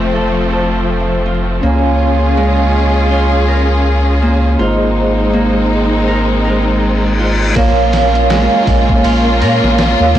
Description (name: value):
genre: trip hop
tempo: 81 BPM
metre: 4/4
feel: swing 60% on 16ths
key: Bb minor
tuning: A4 = 440 Hz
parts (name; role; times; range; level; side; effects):
- vibraphone with soft mallets; accompaniment; 0.0-10.2 s; F3 to Ab5; -17 LUFS; right 2 dB; tremolo, vintage 12-bit sampler grit, tape echo
- rich studio string section; sustained chords; 0.0-10.2 s; Db3 to Ab4; -17 LUFS; left 1 dB; vintage 12-bit sampler grit
- Celtic harp; arpeggios; 0.0-10.2 s; Ab3 to Bb4; -18 LUFS; right 1 dB; low-pass filter, tape echo
- round analog bass; bass; 0.0-10.2 s; F1 to Bb2; -15 LUFS; equal; none
- reverse cymbal; sound effects; 6.7-7.6 s; none; -22 LUFS; left 4 dB; none
- trip hop sampler-style drum kit; drums; 7.6-10.2 s; kick drum, ride cymbal, snare drum; -17 LUFS; equal; overdrive
room: light reverb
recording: blown-out, overdriven recording, vinyl crackle, overdrive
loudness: -10 LUFS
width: side -11 dB against mid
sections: 0.0-7.6 A section; 7.6-10.2 B section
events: reverse cymbal 6.7-7.6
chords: 0.0 F; 1.6 Db; 4.6 Ab; 7.6 Bbm